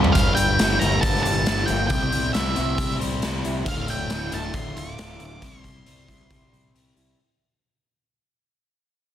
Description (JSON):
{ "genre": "quiet-loud alternative rock", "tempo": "137 BPM", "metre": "4/4", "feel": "straight", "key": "unclear", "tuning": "A4 = 440 Hz", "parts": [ { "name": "raw garage guitar", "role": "riff", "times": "0.0-7.2 s", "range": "D2 to C4", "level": "-29 LUFS", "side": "left 8 dB", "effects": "overdrive" }, { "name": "growling picked electric bass", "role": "bass", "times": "0.0-7.1 s", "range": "D1 to C2", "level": "-28 LUFS", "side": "equal", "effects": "overdrive" }, { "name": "raw garage drum kit", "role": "drums", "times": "0.0-7.1 s", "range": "hi-hat, kick drum, snare drum, toms", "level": "-24 LUFS", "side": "equal", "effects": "none" }, { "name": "octave-fuzz lead guitar", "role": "melody", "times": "0.1-6.7 s", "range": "E5 to D6", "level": "-26 LUFS", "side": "right 2 dB", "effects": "distortion, slapback echo" }, { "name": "electric guitar through a small old amp", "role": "arpeggios", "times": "0.2-7.2 s", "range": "D2 to C5", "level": "-33 LUFS", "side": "right 3 dB", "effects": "slapback echo" } ], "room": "light reverb, small room reverb", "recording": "dense, heavily limited modern master", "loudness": "-20 LUFS", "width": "side -10 dB against mid", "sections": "0.1-7.2 A section", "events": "fade-out 0.1-7.2", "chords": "0.1 Gm; 1.9 C; 3.7 Dm; 5.4 C", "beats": "| 0.15 0.59 1.03 1.46 | 1.90 2.34 2.78 3.22 | 3.66 4.10 4.54 4.98 | 5.42 5.86 6.30 6.74" }